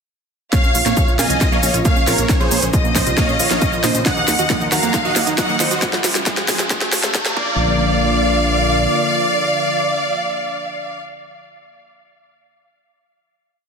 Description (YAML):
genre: uplifting trance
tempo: 136 BPM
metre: 4/4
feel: straight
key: unclear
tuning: A4 = 438 Hz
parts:
  - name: dense compressed supersaw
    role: melody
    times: 0.5-11.0 s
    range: Ab4 to Bb5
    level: -21 LUFS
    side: right 1 dB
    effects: sidechain pumping, dub echo
  - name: warm symphonic violin section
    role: second line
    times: 0.5-11.0 s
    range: Db5 to Gb5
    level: -22 LUFS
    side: left 1 dB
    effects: tape echo
  - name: lush unison pad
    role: sustained chords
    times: 0.5-11.0 s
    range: Db3 to Gb4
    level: -26 LUFS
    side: left 2 dB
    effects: chorus, sidechain pumping
  - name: analog pluck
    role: arpeggios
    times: 0.5-7.8 s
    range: Bb3 to Gb4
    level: -25 LUFS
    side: right 8 dB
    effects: chorus, sidechain pumping, dub echo
  - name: electronic kick drum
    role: drums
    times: 0.5-7.5 s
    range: none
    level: -20 LUFS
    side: equal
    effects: none
  - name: techno drum kit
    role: drums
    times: 0.5-7.3 s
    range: hi-hat, shaker, snare drum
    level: -20 LUFS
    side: equal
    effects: sidechain pumping on hats, sidechain pumping on perc
  - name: riser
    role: sound effects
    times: 2.9-7.6 s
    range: none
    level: -27 LUFS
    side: left 1 dB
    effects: none
  - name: fat analog bass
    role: bass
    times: 0.6-8.9 s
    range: Bb1 to F2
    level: -23 LUFS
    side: equal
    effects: sidechain pumping
room: moderate recital hall reverb, RT60 1.6 s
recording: dense, heavily limited modern master, high-pass filter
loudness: -14 LUFS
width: side -6 dB against mid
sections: 0.5-7.6 build; 7.6-11.1 final hit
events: build-up 0.5-7.6; drum fill 0.5-7.6; filter sweep on synth pluck 0.5-5.8; filter sweep 0.5-7.6; riser 2.9-7.6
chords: 0.5 Bbm; 4.1 Ebm; 5.8 Db; 7.4 Bb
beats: | 0.53 0.97 1.41 1.85 | 2.29 2.73 3.17 3.62 | 4.06 4.50 4.94 5.38 | 5.82 6.26 6.71 7.15 | 7.59 8.03 8.47 8.91 | 9.35 9.79 10.23 10.68